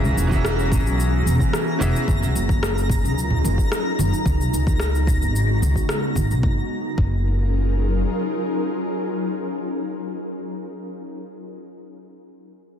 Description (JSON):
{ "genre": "sunset chillout", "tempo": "110 BPM", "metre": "4/4", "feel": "straight", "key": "F# major", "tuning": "A4 = 440 Hz", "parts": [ { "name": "bright concert grand piano", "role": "accompaniment", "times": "0.0-2.1 s", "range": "E3 to E5", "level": "-28 LUFS", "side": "right 2 dB", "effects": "auto-pan, tape echo" }, { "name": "ethereal airy pad", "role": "sustained chords", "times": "0.0-11.0 s", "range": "C#3 to A#4", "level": "-26 LUFS", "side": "equal", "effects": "ensemble chorus, built-in reverb" }, { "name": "upright bass", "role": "bass", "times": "0.0-8.0 s", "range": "E1 to C#2", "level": "-21 LUFS", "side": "equal", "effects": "tube saturation" }, { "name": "electronic shaker and rim click", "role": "drums", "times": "0.0-6.4 s", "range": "none", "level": "-28 LUFS", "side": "left 2 dB", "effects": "overdrive" }, { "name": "twinkling granular texture", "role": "texture", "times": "0.0-6.5 s", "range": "A#5", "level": "-31 LUFS", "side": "left 1 dB", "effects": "built-in reverb" }, { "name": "electronic kick drum", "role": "drums", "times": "0.3-7.1 s", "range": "none", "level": "-22 LUFS", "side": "equal", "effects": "overdrive" }, { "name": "congas", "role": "percussion", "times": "0.3-6.3 s", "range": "none", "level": "-28 LUFS", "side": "right 2 dB", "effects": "none" } ], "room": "light reverb, small room ambience", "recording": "dense, heavily limited modern master", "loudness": "-19 LUFS", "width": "side -9 dB against mid", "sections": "0.0-6.4 A section; 6.4-10.8 B section", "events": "none", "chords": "0.0 E69; 2.1 F#maj13; 4.3 C#9sus4; 6.4 F#maj13" }